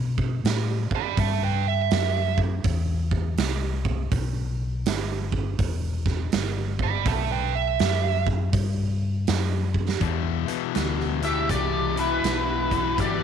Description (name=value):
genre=blues rock power trio and southern rock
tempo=82 BPM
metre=4/4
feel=swing 64% on 8ths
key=E minor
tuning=A4 = 442 Hz
part: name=hollow-body short-scale fingered electric bass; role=bass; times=0.0-13.2 s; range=E1 to B2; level=-26 LUFS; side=left 2 dB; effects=none
part: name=huge arena drum kit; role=drums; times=0.2-13.2 s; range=hi-hat, kick drum, snare drum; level=-27 LUFS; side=right 4 dB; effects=none
part: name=smooth overdriven lead guitar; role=second line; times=0.9-2.4, 6.8-13.2 s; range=E4 to B5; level=-27 LUFS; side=right 12 dB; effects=none
part: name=cranked stack guitar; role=riff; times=10.0-13.2 s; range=E2 to E3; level=-27 LUFS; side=left 17 dB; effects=overdrive
part: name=octave-fuzz lead guitar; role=melody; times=11.2-13.2 s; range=B4 to E5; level=-26 LUFS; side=left 3 dB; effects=wah, distortion, slapback echo
room=light reverb, studio reverb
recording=1960s-style stereo with parts hard left and right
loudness=-22 LUFS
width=side -8 dB against mid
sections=0.0-10.0 A section; 10.0-13.2 B section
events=lead electric guitar solo 0.0-10.0; drum fill 9.6-10.0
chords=0.0 Em